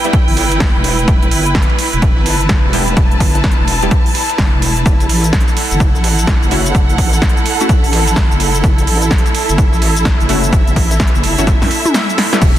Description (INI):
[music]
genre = bass house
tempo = 127 BPM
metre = 4/4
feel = swing 62% on 16ths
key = unclear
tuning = A4 = 441 Hz
[part]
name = orchestra-hit-like synth stab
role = stabs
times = 0.0-12.6 s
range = G3 to A4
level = -21 LUFS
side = left 1 dB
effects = built-in reverb, sidechain pumping, tape echo
[part]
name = big-room dance drum kit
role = drums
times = 0.0-12.6 s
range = crash cymbal, hi-hat, shaker, snare drum, toms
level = -18 LUFS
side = right 1 dB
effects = overdrive
[part]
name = rich symphonic string section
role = texture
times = 0.0-12.6 s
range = E4 to A5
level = -18 LUFS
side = right 2 dB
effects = sidechain pumping
[part]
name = breakbeat sampler-style drum kit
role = drums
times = 0.1-12.6 s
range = hi-hat, ride cymbal, snare drum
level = -28 LUFS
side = right 4 dB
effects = none
[part]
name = electronic kick drum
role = drums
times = 0.1-12.5 s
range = none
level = -13 LUFS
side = equal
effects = overdrive
[part]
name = wobble bass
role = bass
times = 0.3-12.6 s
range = E1 to F#2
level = -17 LUFS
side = equal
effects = chorus, sidechain pumping
[sound]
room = little or no reverb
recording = dense, heavily limited modern master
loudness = -10 LUFS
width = side -12 dB against mid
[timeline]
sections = 0.0-12.6 A section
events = drum fill 11.5-12.4; kick drops out 11.9-12.4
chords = 0.0 Em; 4.9 F#m7